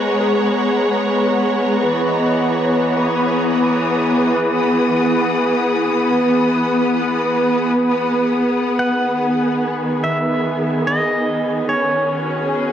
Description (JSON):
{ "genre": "ambient", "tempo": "73 BPM", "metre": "4/4", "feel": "straight", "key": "unclear", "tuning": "A4 = 441 Hz", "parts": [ { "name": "bright symphonic string section", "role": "sustained chords", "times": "0.0-12.7 s", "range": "D#3 to D#6", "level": "-17 LUFS", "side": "equal", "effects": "cassette tape, shimmer reverb" }, { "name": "soft round pluck", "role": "arpeggios", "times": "0.0-8.8 s", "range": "G#4 to G#5", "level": "-27 LUFS", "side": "equal", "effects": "none" }, { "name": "wind-like tuned noise texture", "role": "texture", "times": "0.0-12.7 s", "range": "B3 to G#5", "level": "-22 LUFS", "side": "left 1 dB", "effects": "built-in reverb, cassette tape, shimmer reverb" }, { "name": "pedal steel guitar", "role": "melody", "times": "8.8-12.7 s", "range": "C#5 to F#5", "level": "-21 LUFS", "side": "right 1 dB", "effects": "cassette tape, shimmer reverb, tape echo" } ], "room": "wet spring reverb, RT60 1.4 s", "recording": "home recording on cassette", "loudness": "-15 LUFS", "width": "side -9 dB against mid", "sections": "0.0-8.4 A section; 8.4-12.7 B section", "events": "none", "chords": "0.0 G#m11; 1.8 Emaj7; 8.4 G#m; 11.7 F#sus2" }